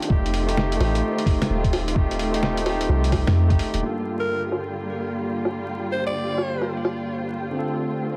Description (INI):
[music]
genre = future garage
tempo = 129 BPM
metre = 4/4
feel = swing 64% on 16ths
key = G minor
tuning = A4 = 438 Hz
[part]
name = barky tine electric piano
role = accompaniment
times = 0.0-8.2 s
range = G2 to A4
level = -30 LUFS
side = equal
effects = sidechain pumping, tape echo
[part]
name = muted studio string section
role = sustained chords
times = 0.0-8.2 s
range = D3 to F4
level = -32 LUFS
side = equal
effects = sidechain pumping
[part]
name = lo-fi sampler-style drum kit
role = drums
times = 0.0-7.0 s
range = hi-hat, snare drum, woodblock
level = -30 LUFS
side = equal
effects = low-pass filter on hats, low-pass filter on snare, low-pass filter on perc
[part]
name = flickering grainy texture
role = texture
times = 0.0-8.2 s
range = G4 to G5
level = -39 LUFS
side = equal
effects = built-in reverb
[part]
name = soft 808-style bass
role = bass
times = 0.1-3.8 s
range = Eb1 to F2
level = -25 LUFS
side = equal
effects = sidechain pumping
[part]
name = electronic kick drum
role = drums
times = 0.1-3.6 s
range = none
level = -24 LUFS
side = equal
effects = none
[part]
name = breathy alto saxophone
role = melody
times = 4.2-6.7 s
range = Bb4 to D5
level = -32 LUFS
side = equal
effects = tape echo
[sound]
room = moderate recital hall reverb, RT60 1.4 s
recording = dense, heavily limited modern master, vinyl crackle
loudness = -23 LUFS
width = mono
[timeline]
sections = 0.0-3.8 A section; 3.8-8.2 B section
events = filter sweep on drum 3.8-8.2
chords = 0.1 F7; 3.8 Gm7; 7.5 Dm7